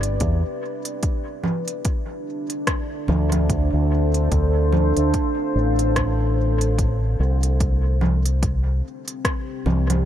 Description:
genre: ambient dub.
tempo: 73 BPM.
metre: 4/4.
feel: swing 58% on 16ths.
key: D dorian.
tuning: A4 = 441 Hz.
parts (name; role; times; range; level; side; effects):
deep dark ambient pad; sustained chords; 0.0-10.1 s; C4 to F5; -25 LUFS; equal; chorus, built-in reverb.
fingered electric bass with an envelope filter; bass; 0.0-10.1 s; G1 to E2; -19 LUFS; equal; tube saturation.
organic electronic drum kit; drums; 0.0-10.0 s; congas, hi-hat, rim click; -26 LUFS; right 2 dB; overdrive, dub echo.
electronic kick drum; drums; 0.2-9.4 s; none; -24 LUFS; equal; overdrive.
room: light reverb.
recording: none.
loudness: -19 LUFS.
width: side -11 dB against mid.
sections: 0.0-10.1 A section.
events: none.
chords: 0.0 Cmaj7; 1.0 Dm7; 7.6 Cmaj7.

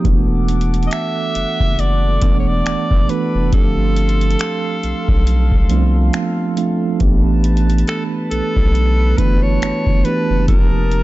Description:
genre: contemporary R&B.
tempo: 69 BPM.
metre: 4/4.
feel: swing 58% on 16ths.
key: E phrygian.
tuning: A4 = 440 Hz.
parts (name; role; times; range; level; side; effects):
mellow tine electric piano; accompaniment; 0.0-11.0 s; E3 to A4; -20 LUFS; right 4 dB; medium stereo tremolo.
round analog bass; bass; 0.0-11.0 s; E1 to C2; -16 LUFS; equal; none.
booming analog drum machine; drums; 0.0-11.0 s; finger snaps, hi-hat, kick drum; -16 LUFS; equal; none.
chorused pulse-width pad; sustained chords; 0.1-11.0 s; A4 to Eb6; -30 LUFS; left 1 dB; sidechain pumping.
clear alto saxophone; melody; 0.9-11.0 s; A4 to E5; -23 LUFS; equal; tape echo.
room: digital ambience.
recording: dark, warm production, nothing above 7.6 kHz.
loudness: -14 LUFS.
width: side -17 dB against mid.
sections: 0.0-11.0 A section.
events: none.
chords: 0.1 E9sus4; 3.5 G9sus4; 7.0 A9sus4; 10.5 F9sus4.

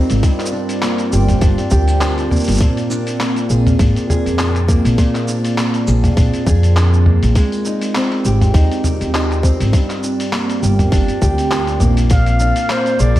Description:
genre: folktronica.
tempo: 101 BPM.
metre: 4/4.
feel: swing 56% on 16ths.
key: Bb mixolydian.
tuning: A4 = 440 Hz.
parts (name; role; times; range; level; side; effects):
warbly tape-like pad; sustained chords; 0.0-13.2 s; C4 to D5; -22 LUFS; right 2 dB; chorus, built-in reverb.
fingerpicked steel-string acoustic guitar; arpeggios; 0.0-13.2 s; G2 to Ab4; -20 LUFS; equal; tape echo.
upright bass; bass; 0.0-13.2 s; G1 to F2; -15 LUFS; equal; none.
lo-fi sampler-style drum kit; drums; 0.1-13.2 s; handclaps, hi-hat, shaker, toms; -21 LUFS; equal; none.
electronic kick drum; drums; 0.2-12.2 s; none; -14 LUFS; equal; none.
breathy flugelhorn; melody; 12.1-13.2 s; C5 to F5; -18 LUFS; left 2 dB; tape echo.
room: light reverb, digital ambience.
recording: vinyl crackle.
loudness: -13 LUFS.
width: side -14 dB against mid.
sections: 0.0-13.2 A section.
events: none.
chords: 0.2 Bb69/G; 2.6 Bb7; 7.4 Abmaj7; 9.7 Bb69/G; 12.1 Bb7.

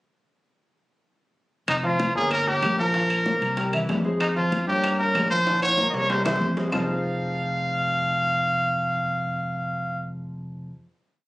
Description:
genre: latin, salsa.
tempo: 190 BPM.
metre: 4/4.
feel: straight.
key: F minor.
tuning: A4 = 435 Hz.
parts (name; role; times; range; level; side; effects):
bright trumpet; melody; 1.7-10.0 s; Eb4 to F5; -23 LUFS; equal; none.
fingered electric bass; bass; 1.7-10.7 s; F1 to G2; -29 LUFS; equal; none.
bongos; percussion; 1.7-6.8 s; none; -34 LUFS; left 2 dB; none.
claves; percussion; 1.7-6.8 s; none; -33 LUFS; equal; none.
congas; percussion; 1.7-6.8 s; none; -33 LUFS; left 2 dB; none.
timbales; percussion; 1.7-6.8 s; none; -32 LUFS; right 2 dB; none.
clear grand piano; accompaniment; 1.8-10.7 s; E3 to F5; -29 LUFS; left 1 dB; none.
room: light reverb.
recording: recorded on a phone in the room, studio ambience.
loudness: -21 LUFS.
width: side -19 dB against mid.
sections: 1.7-6.7 montuno (vamp); 6.7-9.2 final chord.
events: drum fill 5.5-6.7.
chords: 1.7 Fmadd9; 2.3 Gm7b5; 2.9 Bbsus2; 3.6 C7; 4.2 Fm; 4.8 Gm7b5; 5.5 Bbmadd9; 6.1 C7; 6.7 Fm7.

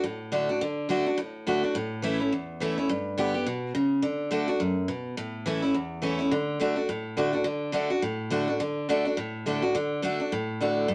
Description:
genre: rock.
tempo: 210 BPM.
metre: 4/4.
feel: swing 59% on 8ths.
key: D major.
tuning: A4 = 440 Hz.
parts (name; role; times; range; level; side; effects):
picked steel-string acoustic guitar; solo; 0.0-10.9 s; E2 to G4; -28 LUFS; equal; none.
room: moderate studio reverb, RT60 0.7 s.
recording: none.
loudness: -28 LUFS.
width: mono.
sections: 0.0-6.3 A section; 6.3-10.9 A section.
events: none.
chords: 0.0 D; 1.8 A; 2.9 G; 4.0 D; 5.2 A; 6.3 D.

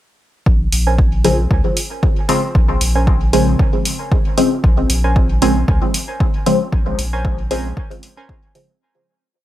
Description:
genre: dub techno.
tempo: 115 BPM.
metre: 4/4.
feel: swing 55% on 16ths.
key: Bb minor.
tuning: A4 = 441 Hz.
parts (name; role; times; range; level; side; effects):
warm sub bass; bass; 0.5-7.7 s; Bb1 to Db2; -18 LUFS; equal; sidechain pumping.
electronic kick drum; drums; 0.5-8.4 s; none; -16 LUFS; equal; small room ambience.
electronic hi-hat; drums; 0.7-8.7 s; none; -23 LUFS; equal; small room ambience.
warbly dusty pluck; riff; 0.9-8.3 s; Db4 to Ab5; -25 LUFS; right 2 dB; chorus, sidechain pumping, dub echo.
filtered dub chord stab; stabs; 1.2-8.7 s; Db3 to C4; -18 LUFS; left 1 dB; phaser, sidechain pumping, dub echo.
room: light reverb, digital ambience.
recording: echo-heavy mix.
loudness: -13 LUFS.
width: side -13 dB against mid.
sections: 0.5-8.8 groove.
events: fade-out 6.0-8.8.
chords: 0.5 Bbm9.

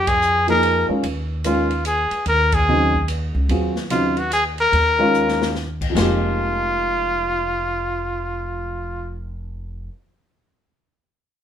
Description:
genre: modal jazz.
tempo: 146 BPM.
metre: 3/4.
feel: swing 64% on 8ths.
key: F minor.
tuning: A4 = 439 Hz.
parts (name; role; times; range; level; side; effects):
clear trumpet; melody; 0.0-9.2 s; F4 to Bb4; -19 LUFS; left 1 dB; none.
upright bass; bass; 0.0-9.9 s; F1 to F2; -25 LUFS; equal; none.
open jazz drum kit; drums; 0.1-6.1 s; crash cymbal, hi-hat, kick drum, ride cymbal, snare drum, splash cymbal; -28 LUFS; left 1 dB; none.
dark baby grand piano; accompaniment; 0.5-9.9 s; F2 to Ab4; -22 LUFS; equal; none.
room: light reverb.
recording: minimal, uncompressed stereo recording.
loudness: -17 LUFS.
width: side -9 dB against mid.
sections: 0.0-6.0 A section; 6.0-8.4 B section.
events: band accent 0.0, 2.5; drum fill 5.1-5.5.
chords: 0.0 Fm11; 1.0 Ebm11; 6.0 Fm11.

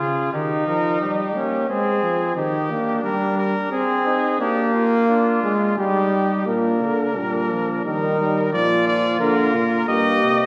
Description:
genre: classical, imitative canzona for brass ensemble.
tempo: 88 BPM.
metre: 3/4.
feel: straight.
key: unclear.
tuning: A4 = 436 Hz.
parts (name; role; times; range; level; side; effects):
clear trumpet; melody; 0.0-10.5 s; F4 to Eb5; -26 LUFS; equal; none.
warm flugelhorn; second line; 0.0-10.5 s; C4 to G4; -27 LUFS; equal; none.
warm trombone; accompaniment; 0.0-10.4 s; Db3 to C4; -24 LUFS; equal; none.
clear bass trombone; bass; 6.5-10.5 s; G2 to Eb3; -25 LUFS; equal; none.
room: wet scoring stage reverb, RT60 1.9 s.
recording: recorded in a church or concert hall, faint mains hum.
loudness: -20 LUFS.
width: mono.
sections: 0.0-6.5 A section; 6.5-10.5 B section.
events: none.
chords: 0.3 Eb; 1.7 Ab; 2.4 Eb; 3.7 Ab/C; 4.4 Bb; 5.8 Eb/G; 6.5 Bb; 7.8 Eb; 8.5 Bb; 9.9 Eb/G.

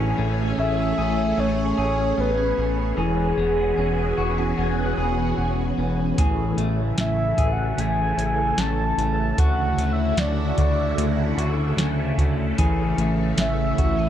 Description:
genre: dream pop.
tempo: 75 BPM.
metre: 4/4.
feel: straight.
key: A major.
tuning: A4 = 440 Hz.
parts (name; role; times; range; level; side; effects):
phased string machine; sustained chords; 0.0-14.1 s; C#3 to G#4; -26 LUFS; equal; ensemble chorus, phaser, shimmer reverb.
clean electric guitar; arpeggios; 0.0-14.1 s; E3 to G#4; -28 LUFS; left 3 dB; wide subtle chorus, digital delay, shimmer reverb.
fat analog bass; bass; 0.0-14.1 s; E1 to D2; -25 LUFS; equal; none.
soft octave-layered synth lead; melody; 0.6-14.1 s; G#4 to A5; -25 LUFS; equal; chorus, digital delay, shimmer reverb.
soft vintage rhythm box; drums; 6.2-14.0 s; hi-hat, kick drum, snare drum; -23 LUFS; equal; none.
room: moderate plate reverb, RT60 3.6 s.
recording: faint mains hum.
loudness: -20 LUFS.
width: side -10 dB against mid.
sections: 0.0-14.1 A section.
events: none.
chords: 0.0 Amaj7; 3.0 E6; 6.2 Amaj7; 9.4 Dmaj7; 12.6 Amaj7.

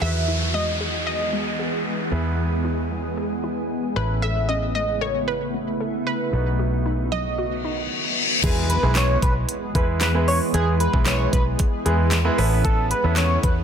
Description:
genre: dance-pop.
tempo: 114 BPM.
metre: 4/4.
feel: straight.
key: E major.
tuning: A4 = 439 Hz.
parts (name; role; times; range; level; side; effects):
analog pluck; melody; 0.0-8.1 s; B4 to E5; -27 LUFS; right 1 dB; chorus, tape echo.
clear baby grand piano; accompaniment; 0.0-13.6 s; G#3 to B4; -29 LUFS; right 3 dB; sidechain pumping.
shimmering ambient pad; sustained chords; 0.0-13.6 s; C#3 to G#4; -28 LUFS; equal; chorus, built-in reverb, sidechain pumping.
hollow square pluck; arpeggios; 0.0-7.9 s; F#3 to A4; -34 LUFS; left 4 dB; chorus, sidechain pumping, tape echo.
vintage muted fingered electric bass; bass; 0.0-13.6 s; A1 to E2; -23 LUFS; equal; sidechain pumping.
downlifter, reverse cymbal and impact; sound effects; 0.0-10.5 s; none; -27 LUFS; left 2 dB; none.
wide unison lead; melody; 8.4-13.5 s; G#4 to C#5; -25 LUFS; equal; sidechain pumping, tape echo.
pop drum kit; drums; 8.4-13.6 s; crash cymbal, handclaps, hi-hat, kick drum, snare drum; -23 LUFS; equal; none.
room: light reverb.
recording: dense, heavily limited modern master, faint mains hum.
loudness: -20 LUFS.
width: side -8 dB against mid.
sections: 0.0-8.4 A section; 8.4-13.6 B section.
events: reverse cymbal 7.7-8.4; drop 8.4-13.6; impact 8.4-10.5.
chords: 0.0 E; 4.0 Aadd9; 6.3 B; 8.4 E; 12.4 Aadd9.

